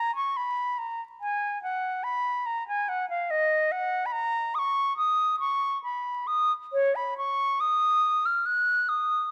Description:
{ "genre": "classical, baroque-style fantasia for unaccompanied flute", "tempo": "71 BPM", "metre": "3/4", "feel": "rubato", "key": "unclear", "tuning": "A4 = 439 Hz", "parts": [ { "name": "mellow wooden flute", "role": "solo", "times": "0.0-9.3 s", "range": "C#5 to F#6", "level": "-27 LUFS", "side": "equal", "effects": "none" } ], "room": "light reverb", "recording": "close, detailed microphones, vinyl crackle", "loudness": "-27 LUFS", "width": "mono", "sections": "0.0-9.3 A section", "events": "none", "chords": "none", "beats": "0.79 | 1.62 2.46 3.29 | 4.12 4.97 5.82 | 6.72 7.60 8.46" }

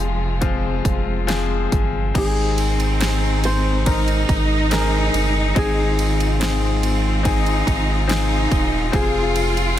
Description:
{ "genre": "pop ballad", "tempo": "71 BPM", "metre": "4/4", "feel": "straight", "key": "Ab major", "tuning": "A4 = 440 Hz", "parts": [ { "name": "flamenco guitar", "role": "melody", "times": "0.0-9.8 s", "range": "Ab4 to C5", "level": "-27 LUFS", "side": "equal", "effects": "ping-pong delay" }, { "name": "clear grand piano", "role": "accompaniment", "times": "0.0-9.8 s", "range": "Ab2 to Bb4", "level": "-24 LUFS", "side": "left 8 dB", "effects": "none" }, { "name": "warm studio string section", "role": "sustained chords", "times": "0.0-9.8 s", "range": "C3 to F4", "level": "-30 LUFS", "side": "left 1 dB", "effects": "none" }, { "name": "warm sub bass", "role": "bass", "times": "0.0-9.8 s", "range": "Eb1 to Ab1", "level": "-21 LUFS", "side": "right 1 dB", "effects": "none" }, { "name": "pop drum kit", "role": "drums", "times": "0.4-9.8 s", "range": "crash cymbal, hi-hat, kick drum, ride cymbal, snare drum", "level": "-23 LUFS", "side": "right 1 dB", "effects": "none" }, { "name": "rich studio cello section", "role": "second line", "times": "2.2-9.8 s", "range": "C4 to F4", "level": "-24 LUFS", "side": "right 2 dB", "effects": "none" } ], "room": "small room ambience", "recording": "dense, heavily limited modern master", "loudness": "-17 LUFS", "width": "side -11 dB against mid", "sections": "0.0-2.1 A section; 2.1-9.8 B section", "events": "none", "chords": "0.0 Fm; 2.1 Ab; 8.9 Fm", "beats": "0.41 1.28 | 2.15 3.01 3.86 4.71 | 5.56 6.41 7.25 8.09 | 8.93 9.78" }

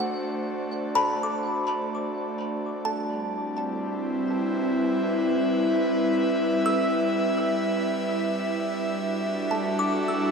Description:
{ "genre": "ambient", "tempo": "63 BPM", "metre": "3/4", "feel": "straight", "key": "unclear", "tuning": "A4 = 440 Hz", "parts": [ { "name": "airy breathy pad", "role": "sustained chords", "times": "0.0-10.3 s", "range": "G3 to E5", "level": "-24 LUFS", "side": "equal", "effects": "chorus" }, { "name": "kalimba", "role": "arpeggios", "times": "0.0-10.3 s", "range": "F#5 to E6", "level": "-30 LUFS", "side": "equal", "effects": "tape echo" } ], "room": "wet cathedral reverb, RT60 4.7 s", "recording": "none", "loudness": "-24 LUFS", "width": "side -5 dB against mid", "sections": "0.0-10.3 A section", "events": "none", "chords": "0.0 D7; 2.9 Cmaj7; 8.6 Em11", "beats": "0.94 1.90 | 2.85 3.80 4.75 | 5.71 6.66 7.61 | 8.56 9.52" }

